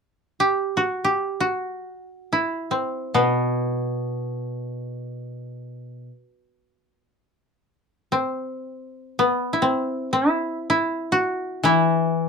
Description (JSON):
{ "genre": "japanese traditional, Japanese chamber music", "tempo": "free time", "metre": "none", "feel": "none", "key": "E hirajoshi", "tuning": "A4 = 439 Hz", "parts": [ { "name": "koto", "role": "melody", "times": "0.4-12.3 s", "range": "B3 to G4", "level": "-22 LUFS", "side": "equal", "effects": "none" }, { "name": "koto", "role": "accompaniment", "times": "3.1-6.1, 11.6-12.3 s", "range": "B2 to E3", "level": "-23 LUFS", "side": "left 2 dB", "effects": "none" } ], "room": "moderate small room reverb, RT60 0.5 s", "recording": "dark, warm production", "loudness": "-21 LUFS", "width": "side -5 dB against mid", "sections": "0.0-12.3 A section", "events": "none", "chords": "none", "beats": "free time" }